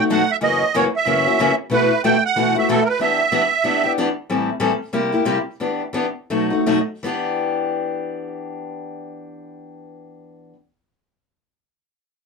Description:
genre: jazz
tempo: 159-187 BPM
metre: 4/4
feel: swing 60% on 8ths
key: E minor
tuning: A4 = 440 Hz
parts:
  - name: musette accordion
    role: melody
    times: 0.0-3.9 s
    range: A4 to G5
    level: -18 LUFS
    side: right 6 dB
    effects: none
  - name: picked steel-string acoustic guitar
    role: accompaniment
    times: 0.0-10.6 s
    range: F#2 to A4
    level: -20 LUFS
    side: left 3 dB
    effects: none
room: moderate small room reverb, RT60 0.5 s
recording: close, detailed microphones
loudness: -17 LUFS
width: side -4 dB against mid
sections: 0.0-4.3 A section; 4.3-7.0 B section; 7.0-10.0 C section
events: slowing down 4.3-7.0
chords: 0.4 F#7; 1.7 B7sus4; 3.0 Em7; 4.3 Am7; 4.9 C7; 5.6 Em7; 6.3 B7; 7.0 Em7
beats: 0.11 | 0.43 0.75 1.07 1.39 | 1.71 2.03 2.35 2.68 | 3.00 3.32 3.64 3.96 | 4.28 4.60 4.93 5.26 | 5.59 5.93 6.29 6.65 | 7.02 7.40 7.78 8.15 | 8.53 8.91 9.29 9.67

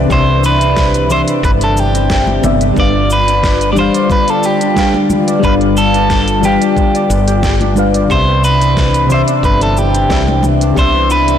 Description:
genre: sunset chillout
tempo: 90 BPM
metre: 4/4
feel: swing 53% on 16ths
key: C major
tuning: A4 = 443 Hz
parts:
  - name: mellow FM electric piano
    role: accompaniment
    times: 0.0-11.4 s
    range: C3 to F5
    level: -16 LUFS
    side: moving between left 5 dB and right 5 dB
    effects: chorus, phaser, auto-pan, vintage 12-bit sampler grit
  - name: airy breathy pad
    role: sustained chords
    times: 0.0-11.4 s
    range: C3 to D5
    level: -20 LUFS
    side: left 2 dB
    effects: chorus
  - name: concert harp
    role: arpeggios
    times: 0.0-11.4 s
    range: B3 to D5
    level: -21 LUFS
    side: left 1 dB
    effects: ping-pong delay
  - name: woody fretless electric bass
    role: bass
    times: 0.0-11.4 s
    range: G1 to C2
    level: -15 LUFS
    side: equal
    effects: transformer saturation
  - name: electric guitar at the edge of break-up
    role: melody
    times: 0.1-11.4 s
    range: G4 to D5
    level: -15 LUFS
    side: equal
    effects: phaser, ping-pong delay
  - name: electronic kick drum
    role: drums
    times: 0.1-10.9 s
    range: none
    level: -16 LUFS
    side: equal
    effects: none
  - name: smooth R&B drum kit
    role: drums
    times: 0.1-11.4 s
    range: hi-hat, shaker, snare drum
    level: -24 LUFS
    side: equal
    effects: none
  - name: congas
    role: percussion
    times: 1.1-10.6 s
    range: none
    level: -22 LUFS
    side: left 1 dB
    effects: none
room: moderate lush hall reverb, RT60 2.5 s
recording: blown-out, overdriven recording, overdrive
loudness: -10 LUFS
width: side -9 dB against mid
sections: 0.0-11.4 A section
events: none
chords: 0.0 Cmaj9; 2.8 G7; 8.1 Cmaj9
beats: | 0.10 0.77 1.44 2.10 | 2.77 3.44 4.11 4.77 | 5.44 6.11 6.77 7.44 | 8.11 8.77 9.44 10.11 | 10.77

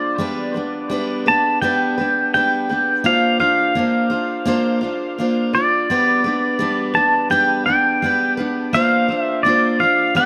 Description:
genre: rock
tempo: 84 BPM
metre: 4/4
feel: straight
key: G mixolydian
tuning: A4 = 441 Hz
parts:
  - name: pedal steel guitar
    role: melody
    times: 0.0-10.3 s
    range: D5 to A5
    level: -20 LUFS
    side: equal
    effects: dub echo
  - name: picked steel-string acoustic guitar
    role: accompaniment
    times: 0.0-10.3 s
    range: G3 to C5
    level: -22 LUFS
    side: equal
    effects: dub echo
room: light reverb, studio reverb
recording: echo-heavy mix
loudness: -18 LUFS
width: mono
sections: 0.0-10.3 A section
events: none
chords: 0.2 G; 3.0 Bbadd9; 5.9 G; 8.7 Bbadd9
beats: | 0.20 0.92 1.63 2.34 | 3.05 3.76 4.47 5.18 | 5.89 6.60 7.31 8.02 | 8.73 9.44 10.15

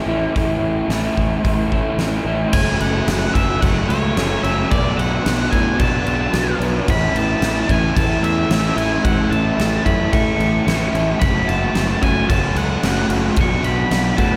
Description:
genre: rock, shoegaze and dream pop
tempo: 111 BPM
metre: 4/4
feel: straight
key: A major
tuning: A4 = 436 Hz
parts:
  - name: raw garage guitar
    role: riff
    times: 0.0-14.4 s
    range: F#2 to F#4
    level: -22 LUFS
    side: equal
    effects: overdrive, subtle chorus
  - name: fuzz fingered electric bass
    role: bass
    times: 0.1-14.4 s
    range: F#1 to B2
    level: -25 LUFS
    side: equal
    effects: overdrive
  - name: huge arena drum kit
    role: drums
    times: 0.4-14.3 s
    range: crash cymbal, hi-hat, kick drum, snare drum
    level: -24 LUFS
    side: equal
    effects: none
  - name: octave-fuzz lead guitar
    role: melody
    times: 2.5-14.4 s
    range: C#5 to C#6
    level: -26 LUFS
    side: equal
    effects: distortion, delay
room: wet cathedral reverb, RT60 7.5 s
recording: dreamy mix soaked in reverb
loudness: -18 LUFS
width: mono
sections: 0.0-2.5 A section; 2.5-14.4 B section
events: none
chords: 0.0 A; 2.5 F#m; 4.7 Bm7; 6.9 A; 11.2 F#m; 13.4 Bm7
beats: | 0.35 0.90 1.44 1.98 | 2.53 3.07 3.62 4.16 | 4.70 5.24 5.79 6.33 | 6.87 7.41 7.95 8.49 | 9.04 9.58 10.12 10.66 | 11.20 11.74 12.28 12.82 | 13.36 13.90

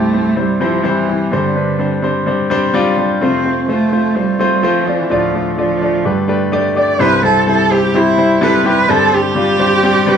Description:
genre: pop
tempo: 127 BPM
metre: 4/4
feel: straight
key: C major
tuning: A4 = 440 Hz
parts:
  - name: dark cello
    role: melody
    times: 0.0-10.2 s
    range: D3 to D5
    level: -15 LUFS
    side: right 3 dB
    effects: none
  - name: clear concert grand piano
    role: accompaniment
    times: 0.0-10.2 s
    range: C2 to D5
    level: -14 LUFS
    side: left 2 dB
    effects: none
room: wet large studio reverb, RT60 0.9 s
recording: band playing live in one room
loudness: -12 LUFS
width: side -7 dB against mid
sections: 0.0-7.0 A section; 7.0-10.2 B section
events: none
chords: 0.0 C; 1.3 Gsus4; 3.2 F; 5.1 Dm; 6.1 Gadd9; 7.0 C; 8.9 Gsus4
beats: 0.37 0.85 | 1.32 1.79 2.27 2.74 | 3.21 3.69 4.16 4.63 | 5.11 5.58 6.05 6.53 | 7.00 7.47 7.95 8.42 | 8.89 9.36 9.84

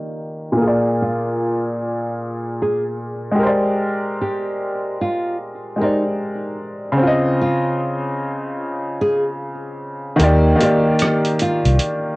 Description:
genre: lo-fi hip hop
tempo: 75 BPM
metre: 4/4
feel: swing 63% on 16ths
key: Eb major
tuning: A4 = 440 Hz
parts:
  - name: clear upright piano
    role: accompaniment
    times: 0.0-12.2 s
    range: Bb2 to Eb5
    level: -18 LUFS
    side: equal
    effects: low-pass filter
  - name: nylon-string guitar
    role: melody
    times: 1.0-11.8 s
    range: Eb4 to Ab4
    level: -24 LUFS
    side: right 1 dB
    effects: low-pass filter, cassette tape
  - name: vintage muted fingered electric bass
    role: bass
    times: 10.2-11.8 s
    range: C2 to Eb2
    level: -15 LUFS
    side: equal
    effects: transformer saturation
  - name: dusty soul sampler-style drum kit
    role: drums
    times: 10.2-12.0 s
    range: hi-hat, rim click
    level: -23 LUFS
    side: right 1 dB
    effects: overdrive
room: moderate studio reverb, RT60 0.6 s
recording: home recording on cassette, nothing above 10.4 kHz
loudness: -17 LUFS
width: side -23 dB against mid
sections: 0.0-10.2 A section; 10.2-12.2 B section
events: filter sweep 0.0-10.2; kick muted 10.2-12.2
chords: 0.0 Ebmaj7; 0.6 Bb7; 3.4 Abmaj9#11; 7.0 Dbmaj9; 10.2 Ebmaj7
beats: | 0.59 1.39 2.19 2.99 | 3.79 4.59 5.39 6.19 | 6.99 7.79 8.59 9.39 | 10.19 10.99 11.79

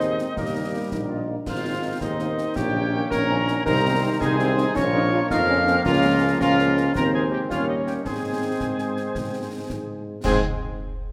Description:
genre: military-style march for wind band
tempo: 109 BPM (dotted quarters)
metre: 6/8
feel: straight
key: Ab major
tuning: A4 = 441 Hz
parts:
  - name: dark cornet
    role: melody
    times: 0.0-10.4 s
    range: Eb4 to F5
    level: -31 LUFS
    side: equal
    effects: none
  - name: mellow euphonium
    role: second line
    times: 0.0-9.9 s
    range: Ab3 to F4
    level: -32 LUFS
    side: equal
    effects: none
  - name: mellow piccolo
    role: second line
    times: 0.0-10.4 s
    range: Eb5 to F6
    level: -32 LUFS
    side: equal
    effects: none
  - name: warm woodwind section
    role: second line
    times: 0.0-10.4 s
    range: Eb4 to Db5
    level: -35 LUFS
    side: equal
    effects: none
  - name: warm French horn section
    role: accompaniment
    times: 0.0-10.4 s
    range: Eb3 to Eb4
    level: -30 LUFS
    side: equal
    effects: none
  - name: clear trombone section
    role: sustained chords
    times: 0.0-10.4 s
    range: Eb3 to Db4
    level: -34 LUFS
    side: equal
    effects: none
  - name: clear tuba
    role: bass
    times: 0.0-10.4 s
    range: Ab1 to Ab2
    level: -29 LUFS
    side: equal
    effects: none
  - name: concert snare drum, concert bass drum and clash cymbals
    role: drums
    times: 0.0-10.4 s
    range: none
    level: -35 LUFS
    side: equal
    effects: none
room: wet recital hall reverb, RT60 1.7 s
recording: none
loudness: -23 LUFS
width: mono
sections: 0.0-10.2 A section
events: none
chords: 0.4 Eb; 1.5 Ab; 2.6 Eb7/Bb; 3.7 Ab/C; 4.8 Bbm; 5.9 Bbm/Db; 7.0 Ab/Eb; 7.5 Eb7; 8.1 Ab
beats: | 0.36 0.91 | 1.46 2.01 | 2.56 3.11 | 3.66 4.21 | 4.76 5.30 | 5.85 6.40 | 6.95 7.50 | 8.05 8.60 | 9.15 9.70 | 10.25

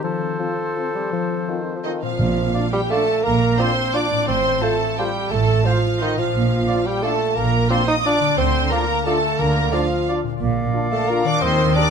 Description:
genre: classical, orchestral ballroom waltz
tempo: 160-191 BPM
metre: 3/4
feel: rubato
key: Bb major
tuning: A4 = 440 Hz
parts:
  - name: clear clarinet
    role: second line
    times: 0.0-11.9 s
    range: F4 to Bb4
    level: -32 LUFS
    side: left 3 dB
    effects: none
  - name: mellow hollow silver concert flute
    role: second line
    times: 0.0-11.9 s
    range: F5 to A5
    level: -31 LUFS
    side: left 3 dB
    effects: none
  - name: warm oboe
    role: second line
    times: 0.0-11.9 s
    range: C5 to Eb5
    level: -32 LUFS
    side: right 2 dB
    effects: none
  - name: warm bassoon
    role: accompaniment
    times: 0.0-11.9 s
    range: Eb3 to Eb4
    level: -23 LUFS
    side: right 2 dB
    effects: none
  - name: concert harp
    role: arpeggios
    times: 0.0-11.9 s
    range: A2 to F5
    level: -29 LUFS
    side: left 13 dB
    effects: none
  - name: mellow French horn section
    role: sustained chords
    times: 0.4-11.9 s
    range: C4 to Bb4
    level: -30 LUFS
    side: left 4 dB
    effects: none
  - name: warm symphonic violin section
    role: melody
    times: 1.8-11.9 s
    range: Eb5 to Eb6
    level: -29 LUFS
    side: left 1 dB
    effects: none
  - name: warm symphonic violin section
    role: second line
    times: 1.8-11.9 s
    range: Eb5 to Eb6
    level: -28 LUFS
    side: left 1 dB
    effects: none
  - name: rich symphonic viola section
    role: accompaniment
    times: 1.8-11.9 s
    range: Eb4 to Eb5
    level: -26 LUFS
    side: right 2 dB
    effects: none
  - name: warm chamber cello section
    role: bass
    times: 2.2-11.7 s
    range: A2 to Eb3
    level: -25 LUFS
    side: right 2 dB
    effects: none
  - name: warm symphonic double bass section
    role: bass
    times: 2.2-11.7 s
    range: A1 to Eb2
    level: -24 LUFS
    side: right 4 dB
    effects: none
  - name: timpani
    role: percussion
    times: 2.2-2.7 s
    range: Bb2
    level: -25 LUFS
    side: right 2 dB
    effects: none
room: moderate scoring stage reverb, RT60 1.5 s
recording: close, detailed microphones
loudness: -17 LUFS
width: side -6 dB against mid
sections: 0.0-2.2 A section; 2.2-11.9 B section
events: none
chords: 0.0 F; 2.2 Bb; 4.3 F/A; 6.3 Bb; 8.4 Bb/D; 10.4 Bb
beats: | 0.04 0.39 0.77 | 1.12 1.48 1.84 | 2.19 2.54 2.90 | 3.24 3.58 3.94 | 4.28 4.62 4.98 | 5.31 5.65 6.01 | 6.34 6.68 7.03 | 7.36 7.70 8.05 | 8.38 8.71 9.06 | 9.40 9.73 10.08 | 10.41 10.74 11.09 | 11.42 11.75

